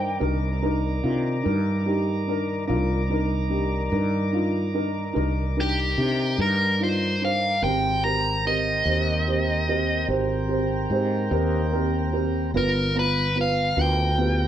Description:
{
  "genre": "slow blues",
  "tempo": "49 BPM (dotted quarters)",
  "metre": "12/8",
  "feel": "straight",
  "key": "C minor",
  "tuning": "A4 = 440 Hz",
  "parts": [
    { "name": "dark smooth lead guitar", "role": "melody", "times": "0.0-14.5 s", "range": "G4 to Bb5", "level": "-24 LUFS", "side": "equal", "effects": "overdrive" },
    { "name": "dark upright piano", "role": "accompaniment", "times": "0.0-14.5 s", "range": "B3 to A#5", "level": "-26 LUFS", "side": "right 1 dB", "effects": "none" },
    { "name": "tonewheel organ", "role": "sustained chords", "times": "0.0-14.5 s", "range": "Eb3 to A#5", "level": "-32 LUFS", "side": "equal", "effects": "slow rotary speaker" },
    { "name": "fretless electric bass", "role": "bass", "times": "0.0-14.5 s", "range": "G1 to C3", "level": "-25 LUFS", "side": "equal", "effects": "none" }
  ],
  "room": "moderate stone room reverb, RT60 1.1 s",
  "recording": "band playing live in one room",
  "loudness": "-21 LUFS",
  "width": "side -10 dB against mid",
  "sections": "0.0-14.5 A section",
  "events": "none",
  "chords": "0.0 Cm7; 7.6 Abmaj7; 12.5 G7#9"
}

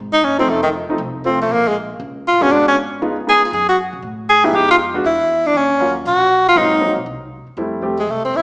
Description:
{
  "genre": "jazz, small-group swing and bop",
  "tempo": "237 BPM",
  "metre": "4/4",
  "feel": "swing 61% on 8ths",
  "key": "unclear",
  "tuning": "A4 = 440 Hz",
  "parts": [
    { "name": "upright bass", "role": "bass", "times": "0.0-8.4 s", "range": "F1 to Db3", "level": "-31 LUFS", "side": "equal", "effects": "none" },
    { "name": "warm tenor saxophone", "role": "melody", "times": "0.1-8.4 s", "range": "Eb3 to Ab4", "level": "-13 LUFS", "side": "equal", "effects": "none" },
    { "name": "warm concert grand piano", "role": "accompaniment", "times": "0.4-8.0 s", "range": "F3 to Ab4", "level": "-21 LUFS", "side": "equal", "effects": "none" }
  ],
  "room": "wet recital hall reverb, RT60 1.4 s",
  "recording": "recorded in a church or concert hall, small speaker sound",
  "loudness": "-13 LUFS",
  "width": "side -30 dB against mid",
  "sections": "0.0-7.6 A section",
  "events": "none",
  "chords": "0.5 F7; 1.5 Bbm; 2.5 Abm7b5; 3.0 Db7; 3.5 Gbmadd9; 4.5 Fm7b5; 5.0 N.C.; 5.5 Ebm9; 6.6 Ab7; 7.1 N.C.; 7.6 Fmaj7"
}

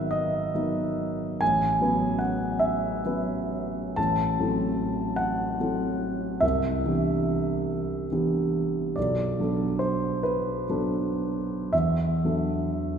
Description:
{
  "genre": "classical, impressionist solo piano",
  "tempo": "37-52 BPM (dotted quarters)",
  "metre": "6/8",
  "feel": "rubato",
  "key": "unclear",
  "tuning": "A4 = 440 Hz",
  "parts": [
    { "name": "clear concert grand piano", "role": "solo", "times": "0.0-13.0 s", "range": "G#1 to A5", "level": "-24 LUFS", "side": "equal", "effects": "none" }
  ],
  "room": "wet church reverb, RT60 3.9 s",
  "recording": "recorded in a church or concert hall",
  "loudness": "-24 LUFS",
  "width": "side -7 dB against mid",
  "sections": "0.0-13.0 A section",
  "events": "none",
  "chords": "0.0 G#m9; 1.4 A69; 4.0 Am6; 6.4 Cmaj9; 9.0 Bm7; 11.7 E9sus4"
}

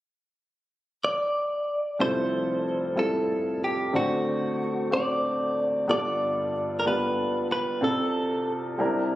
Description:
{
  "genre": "gospel",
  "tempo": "62 BPM (dotted quarters)",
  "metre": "6/8",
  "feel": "straight",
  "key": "F major",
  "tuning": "A4 = 440 Hz",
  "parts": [
    { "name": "direct-recorded clean electric guitar", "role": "melody", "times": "1.0-8.5 s", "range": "F#4 to D5", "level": "-26 LUFS", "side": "equal", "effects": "spring reverb" },
    { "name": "warm upright piano", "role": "accompaniment", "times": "2.0-9.2 s", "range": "F1 to C5", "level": "-26 LUFS", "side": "equal", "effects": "none" }
  ],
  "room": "moderate scoring stage reverb, RT60 1.9 s, small room ambience",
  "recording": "recorded on a phone in the room, club reverb, compression",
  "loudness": "-24 LUFS",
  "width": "side -14 dB against mid",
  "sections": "0.1-2.0 A section; 2.0-9.2 B section",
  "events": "none",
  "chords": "0.1 N.C.; 2.0 Fmaj9; 3.9 D7; 5.9 G9; 7.8 F/C"
}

